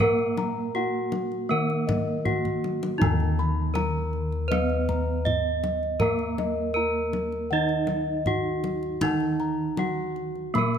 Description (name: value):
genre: Javanese gamelan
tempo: 80 BPM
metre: 4/4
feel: straight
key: Eb pelog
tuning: A4 = 441 Hz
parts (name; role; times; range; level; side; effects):
- gamelan-type bronze metallophone; melody; 0.0-10.8 s; Eb4 to Eb5; -28 LUFS; right 2 dB; none
- gamelan-type bronze metallophone; accompaniment; 0.0-10.8 s; Eb3 to Eb4; -30 LUFS; right 4 dB; none
- gamelan-type bossed gongs; arpeggios; 0.0-10.8 s; Eb5 to Cb6; -34 LUFS; left 6 dB; none
- gamelan-type bossed gongs; bass; 0.0-10.8 s; Eb2 to Bb4; -29 LUFS; left 2 dB; none
- kendang; percussion; 0.0-10.8 s; none; -30 LUFS; left 2 dB; none
room: light reverb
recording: close, detailed microphones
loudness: -24 LUFS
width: side -8 dB against mid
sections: 0.0-10.8 A section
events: drum fill 2.4-3.0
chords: none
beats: | 0.01 0.76 1.51 2.26 | 3.01 3.76 4.51 5.26 | 6.01 6.76 7.51 8.26 | 9.01 9.77 10.54